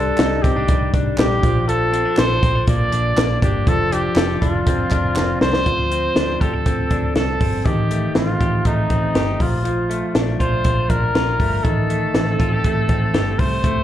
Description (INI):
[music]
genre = jangly indie pop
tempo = 120 BPM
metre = 4/4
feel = straight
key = unclear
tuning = A4 = 440 Hz
[part]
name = warm trumpet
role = melody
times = 0.0-13.8 s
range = Eb4 to D5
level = -22 LUFS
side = right 1 dB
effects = slapback echo, tape echo
[part]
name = clean electric guitar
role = arpeggios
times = 0.0-13.8 s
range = Eb3 to A4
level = -24 LUFS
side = left 4 dB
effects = spring reverb, slapback echo, tape echo
[part]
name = vintage muted fingered electric bass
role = bass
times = 0.0-13.8 s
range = F1 to D2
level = -22 LUFS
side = equal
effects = none
[part]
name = compact cocktail drum kit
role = drums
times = 0.2-13.8 s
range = hi-hat, kick drum, snare drum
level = -20 LUFS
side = equal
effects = none
[part]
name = group handclap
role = percussion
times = 0.2-5.3 s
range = none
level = -33 LUFS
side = right 3 dB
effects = none
[sound]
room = studio reverb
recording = live gig heard through the venue's PA, club reverb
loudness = -16 LUFS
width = side -11 dB against mid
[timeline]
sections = 0.0-5.7 A section; 5.7-13.8 B section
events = drum fill 5.2-5.7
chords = 0.0 Cmadd9; 1.4 Bbmaj7; 3.7 F6; 5.7 Dm7; 7.7 Am7b5; 9.4 Bbmaj7; 11.6 Am7b5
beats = 0.19 0.69 1.18 | 1.68 2.18 2.67 3.17 | 3.67 4.17 4.66 5.16 | 5.66 6.16 6.66 7.16 | 7.65 8.15 8.65 9.15 | 9.65 10.15 10.65 11.15 | 11.64 12.14 12.64 13.14 | 13.64